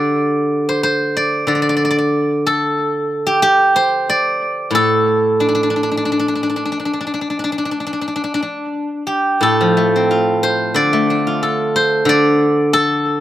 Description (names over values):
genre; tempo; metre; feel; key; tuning
chinese traditional, Chinese solo plucked strings; 91 BPM; 4/4; rubato; D yu mode; A4 = 438 Hz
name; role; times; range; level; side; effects
steel-string zither; solo; 0.0-13.2 s; A2 to A5; -14 LUFS; equal; slapback echo
room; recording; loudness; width
little or no reverb; recorded outdoors, with no room sound; -14 LUFS; side -13 dB against mid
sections
0.0-9.4 A section; 9.4-13.2 B section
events
none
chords
none